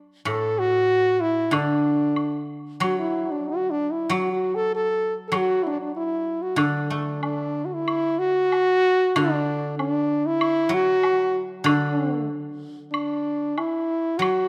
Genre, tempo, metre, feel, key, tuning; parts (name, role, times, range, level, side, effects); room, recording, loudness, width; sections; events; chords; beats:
chinese traditional, Chinese chamber ensemble; 95 BPM; 2/4; rubato; D gong mode; A4 = 440 Hz
clear French horn; melody; 0.3-14.5 s; D4 to A4; -24 LUFS; equal
guzheng; accompaniment; 0.3-14.5 s; A2 to A3; -30 LUFS; equal
woodblock; percussion; 0.3-14.4 s; -32 LUFS; equal
light reverb; -23 LUFS; mono
0.0-7.9 A section; 7.9-14.5 B section
| 0.27 0.89 | 1.52 2.16 | 2.81 3.47 | 4.11 4.72 | 5.33 5.95 | 6.58 7.23 | 7.89 8.53 | 9.17 9.79 | 10.41 11.03 | 11.66 12.30 | 12.94 13.58 | 14.21